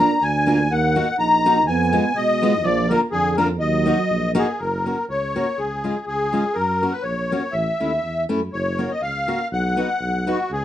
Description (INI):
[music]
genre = alpine folk, alpine dance band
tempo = 123 BPM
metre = 2/4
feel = swing 53% on 8ths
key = Eb harmonic minor, F# major from 4.6 s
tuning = A4 = 439 Hz
[part]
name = musette accordion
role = melody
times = 0.0-10.6 s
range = F#4 to Bb5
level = -21 LUFS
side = left 2 dB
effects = none
[part]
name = warm euphonium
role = second line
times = 0.0-4.3 s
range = D3 to Eb4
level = -24 LUFS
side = right 6 dB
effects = none
[part]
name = fingerpicked steel-string acoustic guitar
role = accompaniment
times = 0.0-10.4 s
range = Ab3 to Gb4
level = -23 LUFS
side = left 1 dB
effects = none
[part]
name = dark tuba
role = bass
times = 0.0-10.6 s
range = F#1 to Cb3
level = -25 LUFS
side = right 1 dB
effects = none
[sound]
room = moderate studio reverb, RT60 0.6 s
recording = band playing live in one room, nothing above 10.4 kHz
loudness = -18 LUFS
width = side -12 dB against mid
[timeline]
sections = 0.0-4.6 A section; 4.6-10.6 B section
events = none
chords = 0.0 Bb; 0.7 Ebm; 1.7 Fdim; 2.6 Bb; 3.6 Ebm; 4.6 F#; 5.6 C#; 6.6 F#; 7.5 A; 8.5 F#; 9.5 B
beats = 0.22 | 0.70 1.19 | 1.68 2.16 | 2.64 3.12 | 3.61 4.10 | 4.59 5.08 | 5.58 6.06 | 6.55 7.04 | 7.53 8.03 | 8.52 9.02 | 9.51 10.00 | 10.49